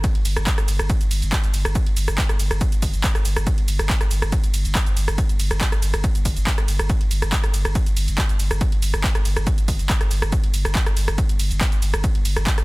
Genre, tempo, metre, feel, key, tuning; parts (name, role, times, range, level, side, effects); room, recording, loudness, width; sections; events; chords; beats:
driving peak-time techno; 140 BPM; 4/4; straight; A4 = 441 Hz
saturated sub bass; bass; 0.0-12.6 s; G1; -23 LUFS; equal; overdrive, sidechain pumping, low-pass filter
electronic kick drum; drums; 0.0-12.6 s; -21 LUFS; equal; overdrive
punchy analog drum machine; drums; 0.0-12.6 s; handclaps, hi-hat, ride cymbal, rim click, shaker; -25 LUFS; right 1 dB; overdrive
little or no reverb; dense, heavily limited modern master; -18 LUFS; side -23 dB against mid
0.0-12.6 A section
| 0.04 0.47 0.90 1.32 | 1.75 2.18 2.61 3.04 | 3.47 3.90 4.32 4.75 | 5.18 5.61 6.04 6.47 | 6.90 7.32 7.75 8.18 | 8.61 9.04 9.47 9.90 | 10.32 10.75 11.18 11.61 | 12.04 12.47